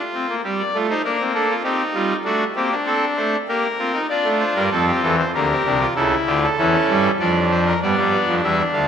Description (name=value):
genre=classical, baroque-style 4-part fugue for pipe organ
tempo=98 BPM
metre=3/4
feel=straight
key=G minor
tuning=A4 = 439 Hz
part: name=pipe organ, trumpet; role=solo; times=0.0-8.9 s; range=C2 to F5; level=-17 LUFS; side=equal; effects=none
room=wet church reverb, RT60 2.4 s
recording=none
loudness=-17 LUFS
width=side -8 dB against mid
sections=0.0-7.8 A section; 7.8-8.9 B section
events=none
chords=0.4 Gm; 1.6 Cm; 2.2 D7/A; 3.5 Gm/Bb; 4.1 Dm; 5.3 Gm/D; 6.0 A7/C#; 7.2 Dm/F; 7.8 G7